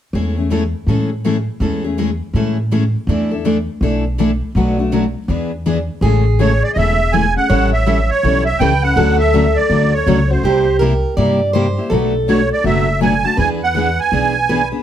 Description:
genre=acoustic string swing (jazz manouche)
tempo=163 BPM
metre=4/4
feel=swing 62% on 8ths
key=A major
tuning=A4 = 440 Hz
part: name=picked steel-string acoustic guitar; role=accompaniment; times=0.1-14.8 s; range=B2 to A4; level=-20 LUFS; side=left 6 dB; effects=none
part: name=picked steel-string acoustic guitar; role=accompaniment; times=0.1-14.6 s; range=B2 to B4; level=-22 LUFS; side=right 3 dB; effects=none
part: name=upright bass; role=bass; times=0.1-14.7 s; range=E1 to A2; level=-18 LUFS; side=equal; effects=none
part: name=picked plugged-in acoustic archtop guitar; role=second line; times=6.0-14.8 s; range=G4 to D5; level=-20 LUFS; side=right 1 dB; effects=none
part: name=musette accordion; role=melody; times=6.4-14.7 s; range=C5 to A5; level=-17 LUFS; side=right 3 dB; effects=none
room=moderate club reverb, RT60 0.9 s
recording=none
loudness=-13 LUFS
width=side -10 dB against mid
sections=0.1-6.0 A section; 6.0-14.8 B section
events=none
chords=0.1 Amaj7/E; 3.1 E7sus4; 4.6 Bm7; 5.3 E7; 6.0 Amaj7; 7.5 A9; 9.0 Dmaj9; 10.4 C7; 11.9 Bm7; 13.4 E9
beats=| 0.14 0.51 0.87 1.24 | 1.61 1.98 2.35 2.71 | 3.08 3.45 3.82 4.18 | 4.55 4.92 5.29 5.65 | 6.02 6.39 6.76 7.12 | 7.49 7.86 8.23 8.60 | 8.96 9.33 9.70 10.07 | 10.44 10.80 11.17 11.54 | 11.91 12.28 12.64 13.01 | 13.38 13.75 14.12 14.48

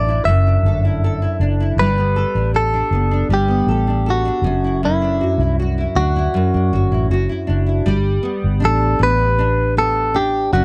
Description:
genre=acoustic pop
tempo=79 BPM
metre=4/4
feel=straight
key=G major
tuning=A4 = 440 Hz
part: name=direct-recorded clean electric guitar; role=melody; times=0.0-10.6 s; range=E4 to E5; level=-21 LUFS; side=equal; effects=none
part: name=nylon-string guitar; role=accompaniment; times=0.0-10.6 s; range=F#2 to A4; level=-22 LUFS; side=equal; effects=double-tracked
part: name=vintage muted fingered electric bass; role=bass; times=0.0-10.6 s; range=F#1 to F#2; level=-21 LUFS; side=equal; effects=none
room=little or no reverb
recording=dry, close 1970s-style studio recording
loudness=-17 LUFS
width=mono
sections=0.0-7.9 A section; 7.9-10.6 B section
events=none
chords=0.0 Dadd9/F#; 1.8 Gadd9; 4.4 Dadd9/F#; 7.9 Gadd9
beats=0.25 1.01 | 1.78 2.54 3.30 4.06 | 4.82 5.58 6.35 7.11 | 7.87 8.63 9.39 10.15

